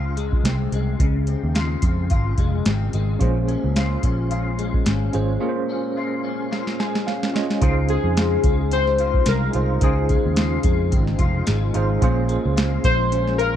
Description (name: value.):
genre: indie pop, bedroom pop.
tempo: 109 BPM.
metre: 4/4.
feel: swing 55% on 16ths.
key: Db major.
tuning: A4 = 440 Hz.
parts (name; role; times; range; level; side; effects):
electric guitar through a small old amp; accompaniment; 0.0-13.6 s; Bb2 to F4; -26 LUFS; left 6 dB; ensemble chorus, vibrato effect.
vintage muted picked electric bass; bass; 0.0-13.6 s; F1 to F2; -22 LUFS; equal; none.
soft vintage rhythm box; drums; 0.2-13.5 s; hi-hat, kick drum, snare drum; -22 LUFS; equal; overdrive.
tine electric piano; accompaniment; 3.2-13.6 s; Db4 to Ab5; -27 LUFS; right 7 dB; fast tremolo.
warbly lo-fi synth keys; melody; 7.9-13.6 s; Ab4 to C5; -22 LUFS; left 5 dB; phaser, lush chorus, slapback echo.
room: digital ambience.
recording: dry, close 1970s-style studio recording.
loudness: -18 LUFS.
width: side -10 dB against mid.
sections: 0.0-7.6 A section; 7.6-13.6 B section.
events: break 5.4-7.6; tine electric piano fill 6.5-7.6; drum fill 6.5-7.6.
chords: 0.0 Dbmaj7; 3.2 Bbm7; 7.6 Dbmaj7; 12.0 Bbm7.